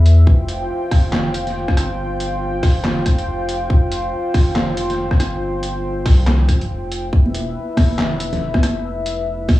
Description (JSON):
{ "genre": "deep dubstep", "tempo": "140 BPM", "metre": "4/4", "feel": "swing 59% on 16ths, half-time", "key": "unclear", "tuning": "A4 = 440 Hz", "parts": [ { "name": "dark analog pad", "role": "sustained chords", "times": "0.0-9.6 s", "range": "E4 to G5", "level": "-24 LUFS", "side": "left 1 dB", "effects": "chorus, cassette tape" }, { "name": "saturated sub bass", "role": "bass", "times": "0.0-9.6 s", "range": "E1 to E2", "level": "-19 LUFS", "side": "equal", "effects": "none" }, { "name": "trip hop sampler-style drum kit", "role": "drums", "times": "0.1-9.6 s", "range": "handclaps, hi-hat, rim click, snare drum", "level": "-23 LUFS", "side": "equal", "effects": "overdrive, studio reverb, cassette tape" }, { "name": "electronic kick drum", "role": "drums", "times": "0.3-9.6 s", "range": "none", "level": "-14 LUFS", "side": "equal", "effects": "studio reverb, cassette tape" }, { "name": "congas", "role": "percussion", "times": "7.3-9.6 s", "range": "none", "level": "-23 LUFS", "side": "right 2 dB", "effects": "dub echo" } ], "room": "light reverb", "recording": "home recording on cassette, small room ambience", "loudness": "-16 LUFS", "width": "side -16 dB against mid", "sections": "0.0-9.6 A section", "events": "none", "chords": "0.3 F5; 7.1 E5", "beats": "| 0.27 0.70 1.13 1.56 | 1.99 2.41 2.84 3.27 | 3.70 4.13 4.56 4.99 | 5.41 5.84 6.27 6.70 | 7.13 7.56 7.99 8.41 | 8.84 9.27" }